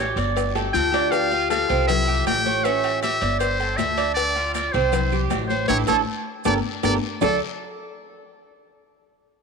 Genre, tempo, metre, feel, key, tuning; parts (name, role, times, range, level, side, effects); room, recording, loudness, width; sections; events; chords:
latin, Cuban son and guajira; 158 BPM; 4/4; straight; D minor; A4 = 435 Hz
trumpet with metal mute; melody; 0.0-7.4 s; A4 to G5; -24 LUFS; left 1 dB; tape echo
Cuban tres; arpeggios; 0.0-7.4 s; C4 to D5; -25 LUFS; right 12 dB
upright bass; bass; 0.0-7.4 s; G1 to D2; -27 LUFS; left 1 dB
congas; percussion; 0.2-7.3 s; -30 LUFS; left 14 dB
cowbell and bongos; percussion; 0.2-7.3 s; -30 LUFS; left 15 dB
guiro; percussion; 0.2-7.3 s; -38 LUFS; left 17 dB
maracas; percussion; 0.2-7.3 s; -41 LUFS; right 17 dB
timbales and agogo bells; percussion; 0.4-7.3 s; -33 LUFS; right 12 dB
concert harp; second line; 0.6-3.7, 7.2-7.4 s; F4 to A4; -28 LUFS; left 14 dB
light reverb, small room ambience; 1960s-style stereo with parts hard left and right; -19 LUFS; side -5 dB against mid
0.0-7.2 A section; 7.2-8.7 B section
drum fill 0.0-1.1, 5.7-7.2; band accent 5.7-7.2
0.4 Gsus2; 1.1 Dm; 1.9 C; 2.6 A7; 3.4 Gsus2; 4.2 Dm; 4.9 C; 5.7 A7; 6.5 Gmadd9; 7.2 D5